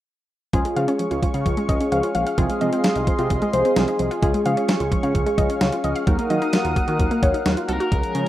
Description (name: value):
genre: synth-pop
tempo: 130 BPM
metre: 4/4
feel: straight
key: Db major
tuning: A4 = 440 Hz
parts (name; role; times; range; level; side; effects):
- funky polysynth comp; accompaniment; 0.5-7.9 s; Ab3 to Bb4; -27 LUFS; equal; chorus
- lush unison pad; sustained chords; 0.5-8.3 s; F3 to Eb6; -25 LUFS; equal; chorus
- analog pluck; arpeggios; 0.5-7.9 s; F3 to F5; -26 LUFS; right 1 dB; chorus, slapback echo
- fat analog bass; bass; 0.5-8.3 s; Bb1 to Eb3; -25 LUFS; equal; none
- clean 12-bit digital drum machine; drums; 0.5-8.3 s; hi-hat, kick drum, snare drum; -23 LUFS; equal; none
- soft round pluck; second line; 0.8-7.6 s; C5 to F5; -25 LUFS; left 2 dB; chorus, slapback echo
- biting lead guitar; melody; 7.7-8.3 s; Bb4; -28 LUFS; left 2 dB; overdrive, slapback echo
room: wet studio reverb, RT60 0.6 s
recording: rough home demo mix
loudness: -18 LUFS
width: side -14 dB against mid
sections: 0.5-7.9 A section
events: none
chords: 0.5 Db; 2.4 Fm7/C; 4.2 Db; 6.1 Ebmadd9